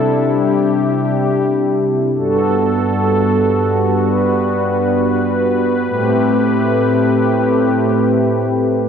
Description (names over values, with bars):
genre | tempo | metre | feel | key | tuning
hip hop | free time | none | none | G major | A4 = 439 Hz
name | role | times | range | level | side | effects
warm analog pad | solo | 0.0-8.9 s | G2 to B4 | -13 LUFS | equal | chorus
room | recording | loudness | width
light reverb, digital ambience | none | -13 LUFS | side -7 dB against mid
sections
0.0-8.9 A section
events
none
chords
0.0 C6; 2.1 Gmaj7; 5.9 Am7